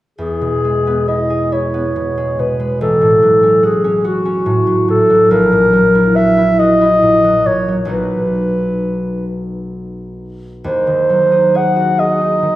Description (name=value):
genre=classical, romantic duo for clarinet and harp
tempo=43-48 BPM (dotted quarters)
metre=6/8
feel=rubato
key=E major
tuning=A4 = 440 Hz
part: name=dark clarinet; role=melody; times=0.2-12.6 s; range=F#4 to F#5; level=-13 LUFS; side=equal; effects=none
part: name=concert harp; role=accompaniment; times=0.2-12.6 s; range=A1 to G#4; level=-17 LUFS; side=equal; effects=none
room=wet recital hall reverb, RT60 1.4 s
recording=heard from further back in the room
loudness=-11 LUFS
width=side -15 dB against mid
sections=0.2-12.6 A section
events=none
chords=0.2 E; 2.8 F#m/A; 5.3 F#7/A#; 7.9 B; 10.7 G#7/D#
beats=| 0.19 1.52 | 2.81 4.06 | 5.32 6.60 | 7.91 9.29 | 10.66 12.00